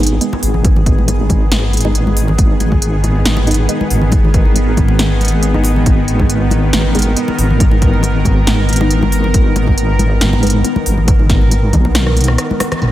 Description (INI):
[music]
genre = deep dubstep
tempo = 138 BPM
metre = 4/4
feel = swing 54% on 16ths, half-time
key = G# minor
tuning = A4 = 440 Hz
[part]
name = bowed-like drone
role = sustained chords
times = 0.0-12.9 s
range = D#3 to A#4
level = -19 LUFS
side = equal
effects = built-in reverb
[part]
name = filtered dub chord stab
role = stabs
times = 0.0-10.7 s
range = G#3 to D#4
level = -23 LUFS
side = equal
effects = phaser, analog chorus, dub echo
[part]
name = deep soft wobble bass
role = bass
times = 0.0-12.9 s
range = G#1 to B1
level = -14 LUFS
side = equal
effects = chorus
[part]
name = deep house drum kit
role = drums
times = 0.0-12.9 s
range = hi-hat, rim click, snare drum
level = -19 LUFS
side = equal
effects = low-pass filter on hats, low-pass filter on snare, low-pass filter on room
[part]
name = congas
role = percussion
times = 0.0-12.9 s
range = none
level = -22 LUFS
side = left 2 dB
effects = dub echo
[part]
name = electronic kick drum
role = drums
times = 0.6-11.8 s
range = none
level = -13 LUFS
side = equal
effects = none
[part]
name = sub drop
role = sound effects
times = 12.8-12.9 s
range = none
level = -14 LUFS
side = equal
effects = none
[sound]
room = light reverb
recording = none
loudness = -10 LUFS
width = side -14 dB against mid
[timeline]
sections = 0.0-12.8 A section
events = drum fill 12.0-12.8; band accent 12.7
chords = 0.0 G#m